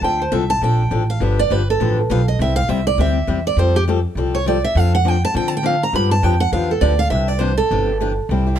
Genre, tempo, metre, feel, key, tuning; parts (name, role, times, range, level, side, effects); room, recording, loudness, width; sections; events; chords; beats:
acoustic string swing (jazz manouche); 203 BPM; 4/4; swing 59% on 8ths; A4 = 441 Hz
picked steel-string acoustic guitar; melody; 0.0-8.0 s; G4 to B5; -19 LUFS; right 3 dB
picked swing-style acoustic guitar; accompaniment; 0.0-8.6 s; C3 to A4; -22 LUFS; left 7 dB
upright bass; bass; 0.0-8.6 s; G1 to D3; -18 LUFS; equal
little or no reverb; dark, warm production; -15 LUFS; side -10 dB against mid
0.0-8.3 A section
steel-string acoustic guitar solo 0.0-8.3
0.0 Dm7; 1.2 G7; 2.4 C; 3.6 Fadd9; 4.8 Dm7/F; 5.9 G7; 7.1 Cadd9
| 0.03 0.32 0.62 0.91 | 1.21 1.50 1.80 2.10 | 2.39 2.69 2.98 3.28 | 3.57 3.87 4.16 4.46 | 4.75 5.05 5.34 5.64 | 5.93 6.23 6.53 6.82 | 7.12 7.41 7.71 8.00 | 8.29 8.59